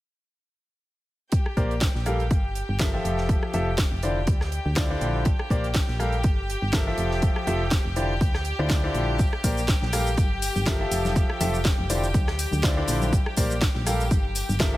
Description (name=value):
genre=piano house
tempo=122 BPM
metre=4/4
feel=swing 55% on 16ths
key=unclear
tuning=A4 = 441 Hz
part: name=clear studio violin section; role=sustained chords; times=1.3-14.8 s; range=G4 to G5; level=-33 LUFS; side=left 1 dB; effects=sidechain pumping
part: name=electronic kick drum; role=drums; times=1.3-14.7 s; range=none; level=-23 LUFS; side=equal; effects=overdrive
part: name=tight funk drum kit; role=drums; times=1.3-14.7 s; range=hi-hat, snare drum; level=-39 LUFS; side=right 3 dB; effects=sidechain pumping on hats, high-pass filter on hats, high-pass filter on snare, high-pass filter on room
part: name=house drum kit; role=drums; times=1.5-14.7 s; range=hi-hat, rim click, shaker, snare drum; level=-31 LUFS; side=equal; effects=overdrive
part: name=clear concert grand piano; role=riff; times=1.6-14.8 s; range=D3 to F5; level=-29 LUFS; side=left 1 dB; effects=sidechain pumping, dub echo
part: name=solid FM bass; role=bass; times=1.6-14.8 s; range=F1 to D2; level=-27 LUFS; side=equal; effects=sidechain pumping
part: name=tambourine and congas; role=percussion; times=9.2-14.7 s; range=none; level=-35 LUFS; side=left 2 dB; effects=none
room=studio reverb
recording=none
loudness=-22 LUFS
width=side -16 dB against mid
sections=1.3-14.8 A section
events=none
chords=1.3 Bb69; 2.1 Gm9; 3.0 Fmaj9; 4.0 Dm9; 5.3 Bb69; 6.0 Gm9; 7.0 Fmaj9; 8.0 Dm9; 9.2 Bb69; 9.9 Gm9; 10.9 Fmaj9; 11.9 Dm9; 13.1 Bb69; 13.9 Gm9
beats=| 1.32 1.82 2.31 2.80 | 3.29 3.78 4.28 4.77 | 5.26 5.75 6.24 6.73 | 7.23 7.72 8.21 8.70 | 9.19 9.69 10.18 10.67 | 11.16 11.65 12.14 12.64 | 13.13 13.62 14.11 14.60